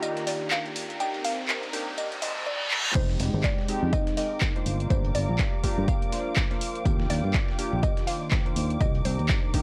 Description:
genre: deep house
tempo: 123 BPM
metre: 4/4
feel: swing 58% on 16ths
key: F dorian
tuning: A4 = 436 Hz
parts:
  - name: mallet-like synth pluck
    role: melody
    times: 0.0-9.6 s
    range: C5 to G5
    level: -37 LUFS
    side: equal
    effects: chorus, phaser, tape echo
  - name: warm analog pad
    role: sustained chords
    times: 0.0-9.6 s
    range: Eb3 to D6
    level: -39 LUFS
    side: equal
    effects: chorus, sidechain pumping
  - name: warm analog keys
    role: stabs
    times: 0.0-9.6 s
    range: Ab3 to C5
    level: -37 LUFS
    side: equal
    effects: chorus, sidechain pumping, tape echo
  - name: dusty soul sampler-style drum kit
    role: drums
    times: 0.0-9.6 s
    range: hi-hat, snare drum, tambourine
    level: -44 LUFS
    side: equal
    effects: none
  - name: punchy analog drum machine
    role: drums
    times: 0.0-9.6 s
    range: crash cymbal, handclaps, hi-hat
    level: -34 LUFS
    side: equal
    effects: none
  - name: riser and reverse cymbal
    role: sound effects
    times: 0.0-3.0 s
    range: none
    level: -34 LUFS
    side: equal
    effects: none
  - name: deep dark ambient pad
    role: texture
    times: 0.6-9.6 s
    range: Eb3 to G5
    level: -45 LUFS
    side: equal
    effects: none
  - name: soft string machine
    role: texture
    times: 0.0-9.6 s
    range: Bb5 to D6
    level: -47 LUFS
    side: equal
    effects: ensemble chorus, sidechain pumping
  - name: fingered electric bass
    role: bass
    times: 3.0-9.3 s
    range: F1 to G2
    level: -29 LUFS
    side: equal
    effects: sidechain pumping
  - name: electronic kick drum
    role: drums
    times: 3.0-9.6 s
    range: none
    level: -28 LUFS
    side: equal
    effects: none
room: digital ambience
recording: dry, gritty hardware recording, transformer saturation, vinyl crackle, high-pass filter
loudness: -27 LUFS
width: mono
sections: 0.0-3.0 A section; 3.0-9.6 B section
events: build-up 0.0-3.0; riser 0.0-2.5; filter sweep on synth keys 0.0-3.0; filter sweep on analog synth pad 0.0-3.0; filter sweep 0.0-3.0; reverse cymbal 2.0-3.0; drum fill 2.7; drop 3.0-9.6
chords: 0.0 Ebmaj7; 1.0 Cm7; 3.0 Fm7; 4.7 Gm7; 6.6 Ebmaj7; 8.8 Cm7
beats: 0.03 0.51 | 1.00 1.49 1.98 2.46 | 2.95 3.44 3.93 4.42 | 4.90 5.39 5.88 6.37 | 6.86 7.34 7.83 8.32 | 8.81 9.29

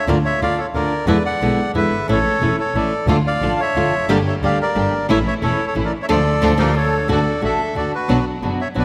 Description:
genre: tango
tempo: 180 BPM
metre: 3/4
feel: rubato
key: D harmonic minor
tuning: A4 = 441 Hz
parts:
  - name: bandoneon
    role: melody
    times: 0.0-8.8 s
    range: F#4 to F#5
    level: -23 LUFS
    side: equal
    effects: none
  - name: flamenco guitar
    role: accompaniment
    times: 0.1-8.8 s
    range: B2 to G4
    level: -23 LUFS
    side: equal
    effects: none
  - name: warm double bass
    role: bass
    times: 0.1-8.8 s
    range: E1 to E2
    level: -24 LUFS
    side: equal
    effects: none
  - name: clear symphonic string section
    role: stabs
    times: 3.1-8.8 s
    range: A3 to G4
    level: -30 LUFS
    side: equal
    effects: none
  - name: breathy mellow silver concert flute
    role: second line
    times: 6.4-7.1 s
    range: G4 to A4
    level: -28 LUFS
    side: equal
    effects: none
room: moderate scoring stage reverb, RT60 1.9 s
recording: none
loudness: -18 LUFS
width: mono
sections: 0.0-7.1 A section; 7.1-8.8 B section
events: band accent 6.1-7.1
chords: 0.1 Bb/D; 1.1 E7; 2.1 A; 3.1 Dm; 4.1 Gm; 5.1 A; 6.1 Dm; 7.1 D; 8.1 Bm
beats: | 0.08 0.41 0.74 | 1.08 1.41 1.75 | 2.08 2.41 2.75 | 3.08 3.42 3.75 | 4.08 4.42 4.75 | 5.08 5.42 5.75 | 6.08 6.42 6.75 | 7.09 7.43 7.76 | 8.10 8.43 8.77

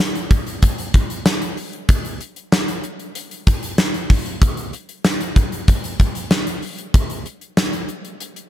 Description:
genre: pop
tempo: 95 BPM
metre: 4/4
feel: straight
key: none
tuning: none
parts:
  - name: group handclap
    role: percussion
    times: 0.0-7.7 s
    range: none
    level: -38 LUFS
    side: equal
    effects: none
  - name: gated 80s drum kit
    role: drums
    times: 0.2-8.5 s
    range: hi-hat, kick drum, snare drum, tambourine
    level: -17 LUFS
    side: equal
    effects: none
room: little or no reverb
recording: none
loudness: -17 LUFS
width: side -12 dB against mid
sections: 0.0-8.5 A section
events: none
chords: none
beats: 0.00 0.63 1.26 | 1.89 2.52 3.15 3.79 | 4.42 5.05 5.68 6.31 | 6.94 7.58 8.21

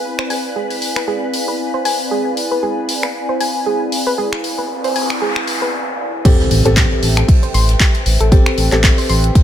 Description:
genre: deep house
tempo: 116 BPM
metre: 4/4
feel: swing 56% on 16ths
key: A minor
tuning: A4 = 440 Hz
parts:
  - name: hollow soft pad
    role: sustained chords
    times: 0.0-9.4 s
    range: C4 to G#5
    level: -23 LUFS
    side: left 1 dB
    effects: chorus, sidechain pumping
  - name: soft string machine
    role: texture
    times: 0.0-5.7 s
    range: B4 to B5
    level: -31 LUFS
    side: equal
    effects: ensemble chorus
  - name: soft round pluck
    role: arpeggios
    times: 0.2-9.4 s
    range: G4 to C6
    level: -22 LUFS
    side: right 1 dB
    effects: chorus, sidechain pumping, ping-pong delay
  - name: deep house drum kit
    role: drums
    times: 0.2-9.4 s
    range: crash cymbal, finger snaps, handclaps, hi-hat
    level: -21 LUFS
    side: equal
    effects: studio reverb
  - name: noise sweep and impact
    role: sound effects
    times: 4.7-8.3 s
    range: none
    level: -22 LUFS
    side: equal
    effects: none
  - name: felt-muted upright piano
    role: stabs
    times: 6.2-9.4 s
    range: C4 to A4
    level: -20 LUFS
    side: left 1 dB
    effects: sidechain pumping, tape echo
  - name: electronic kick drum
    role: drums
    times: 6.2-9.4 s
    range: none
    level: -11 LUFS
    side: equal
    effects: studio reverb
  - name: jazz brush drum kit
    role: drums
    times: 6.3-9.4 s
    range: hi-hat, ride cymbal, snare drum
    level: -29 LUFS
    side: left 2 dB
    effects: sidechain pumping on cymbals, high-pass filter on cymbals, studio reverb, sidechain pumping on hats, high-pass filter on hats, high-pass filter on snare, high-pass filter on room
  - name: smooth synth bass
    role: bass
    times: 6.5-9.3 s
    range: A1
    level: -14 LUFS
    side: equal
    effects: tube saturation, sidechain pumping
room: light reverb, small room reverb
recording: none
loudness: -13 LUFS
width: side -10 dB against mid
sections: 0.0-6.2 A section; 6.2-9.4 B section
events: noise sweep 4.7-6.2; break 5.7-6.2; drop 6.2-9.4; impact 6.2-8.3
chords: 0.0 E7b9b13; 6.2 Am7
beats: | 0.04 0.56 1.08 1.59 | 2.11 2.63 3.15 3.66 | 4.18 4.70 5.21 5.73 | 6.25 6.77 7.28 7.80 | 8.32 8.84 9.35

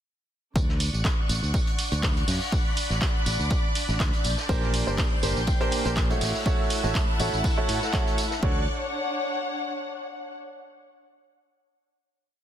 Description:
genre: piano house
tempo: 122 BPM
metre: 4/4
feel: swing 54% on 16ths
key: D major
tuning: A4 = 439 Hz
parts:
  - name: string machine, violins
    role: sustained chords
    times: 0.6-8.7 s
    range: D5 to G6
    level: -33 LUFS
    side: equal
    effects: ensemble chorus, sidechain pumping
  - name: modern bright fingered electric bass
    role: bass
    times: 0.6-8.7 s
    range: G1 to A2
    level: -28 LUFS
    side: equal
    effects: sidechain pumping
  - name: electronic kick drum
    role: drums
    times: 0.6-8.5 s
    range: none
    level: -26 LUFS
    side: equal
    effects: none
  - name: punchy analog drum machine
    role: drums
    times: 0.6-8.4 s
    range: handclaps, hi-hat, tambourine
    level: -31 LUFS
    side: right 1 dB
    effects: none
  - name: vintage drum kit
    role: drums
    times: 0.6-8.4 s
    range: hi-hat, snare drum, tambourine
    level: -38 LUFS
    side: left 1 dB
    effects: none
  - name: dark studio string section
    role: texture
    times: 0.6-10.4 s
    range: D4 to C#6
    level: -34 LUFS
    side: left 2 dB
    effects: sidechain pumping
  - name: clear upright piano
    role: riff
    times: 4.5-8.6 s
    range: Bb2 to C#5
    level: -29 LUFS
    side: right 2 dB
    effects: sidechain pumping, ping-pong delay
room: light reverb, small room reverb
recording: dense, heavily limited modern master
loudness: -23 LUFS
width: side -10 dB against mid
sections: 0.6-8.4 groove; 8.4-10.4 final chord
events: fade-in on string section 0.6-8.4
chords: 0.6 Dmaj7; 4.2 Bb69; 6.2 F#m7/A; 8.4 Dmaj7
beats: | 0.56 1.05 1.54 2.03 | 2.52 3.02 3.51 4.00 | 4.49 4.98 5.47 5.97 | 6.46 6.95 7.44 7.93 | 8.43 8.92 9.41 9.90

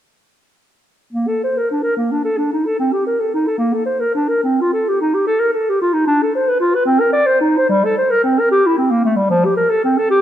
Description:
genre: classical, baroque-style fantasia for unaccompanied clarinet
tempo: 73 BPM (dotted quarters)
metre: 6/8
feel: uneven beats, rubato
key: Bb major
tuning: A4 = 440 Hz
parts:
  - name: mellow clarinet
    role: solo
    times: 1.1-10.2 s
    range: F3 to D5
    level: -14 LUFS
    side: equal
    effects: none
room: moderate recital hall reverb, RT60 1.5 s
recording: dark, warm production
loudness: -14 LUFS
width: side -11 dB against mid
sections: 1.1-10.2 A section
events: none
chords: none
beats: | 1.14 1.98 | 2.79 3.60 | 4.45 5.26 | 6.06 6.85 | 7.68 8.50 | 9.30 10.08

